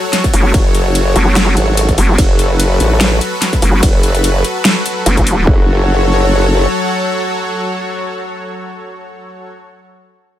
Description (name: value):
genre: heavy wobble dubstep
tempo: 146 BPM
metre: 4/4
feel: swing 55% on 16ths, half-time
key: F# minor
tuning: A4 = 440 Hz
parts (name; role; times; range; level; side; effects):
- supersaw pad; sustained chords; 0.0-9.5 s; F#3 to C#5; -18 LUFS; left 1 dB; sidechain pumping
- dubstep drum kit; drums; 0.1-5.4 s; hi-hat, ride cymbal, snare drum; -17 LUFS; equal; none
- electronic kick drum; drums; 0.2-5.6 s; none; -13 LUFS; equal; distortion
- vowel-sweep wobble bass; bass; 0.3-5.5 s; F#1; -11 LUFS; equal; chorus, overdrive
- formant-sweep wobble bass; bass; 0.5-6.7 s; F#1 to A1; -13 LUFS; equal; chorus, overdrive
room: little or no reverb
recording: none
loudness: -10 LUFS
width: side -12 dB against mid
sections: 0.0-5.5 A section; 5.5-8.8 B section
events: drop 0.0-5.5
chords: 0.0 F#m